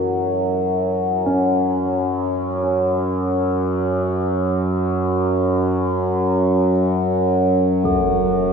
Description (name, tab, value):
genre	dark ambient drone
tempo	free time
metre	none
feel	none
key	unclear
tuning	A4 = 440 Hz
part	dark concert grand piano	arpeggios	0.0-8.5 s	E3 to C#4	-28 LUFS	left 1 dB	diffuse ambient delay
part	overtone-sweeping drone	drone	0.0-8.5 s	F#2 to F#3	-17 LUFS	equal	chorus, built-in reverb
part	bronze singing bowl	texture	0.0-8.5 s	G#4 to A4	-29 LUFS	right 3 dB	none
part	sweeping resonant pad	sustained chords	7.8-8.5 s	F#3	-25 LUFS	right 11 dB	lush chorus
part	impact	percussion	7.8-8.0 s	none	-27 LUFS	left 1 dB	low-pass filter on sfx
room	wet cathedral reverb, RT60 5.3 s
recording	nothing above 8.0 kHz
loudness	-17 LUFS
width	side -6 dB against mid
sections	0.0-8.5 A section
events	fade-in on impacts and reversed cymbals 0.0-8.5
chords	0.0 F#sus2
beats	free time